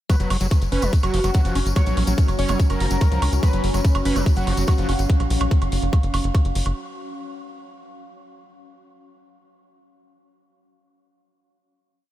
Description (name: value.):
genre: psychedelic trance.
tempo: 144 BPM.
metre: 4/4.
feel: straight.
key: F# major.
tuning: A4 = 442 Hz.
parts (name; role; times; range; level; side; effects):
wide unison lead; melody; 0.1-5.0 s; F#4 to C#5; -30 LUFS; equal; phaser, sidechain pumping, diffuse ambient delay.
vowel-sweep wobble bass; second line; 0.1-4.3 s; F#3 to C#4; -44 LUFS; right 3 dB; none.
overtone-sweeping drone; sustained chords; 0.7-5.1 s; F#3 to C#4; -30 LUFS; equal; chorus, built-in reverb, sidechain pumping.
screaming distorted acid line; riff; 0.1-4.9 s; E#3 to C#4; -30 LUFS; moving between left 4 dB and right 5 dB; distortion, chorus, auto-pan, sidechain pumping, diffuse ambient delay.
electronic hi-hat and woodblock; drums; 0.1-6.7 s; none; -31 LUFS; right 3 dB; none.
electronic kick drum; drums; 0.1-6.4 s; none; -17 LUFS; equal; none.
tambourine; percussion; 0.1-5.1 s; none; -37 LUFS; left 4 dB; none.
warbly tape-like pad; texture; 1.6-6.8 s; C#4 to F#5; -37 LUFS; right 2 dB; chorus, built-in reverb, sidechain pumping.
tight sequencer bass; bass; 0.2-6.7 s; F#1 to C#2; -22 LUFS; equal; tube saturation.
room: light reverb.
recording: none.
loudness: -18 LUFS.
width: side -13 dB against mid.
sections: 0.1-6.8 groove.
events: fade-in on ambient pad 0.1-6.8.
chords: 0.1 F#5.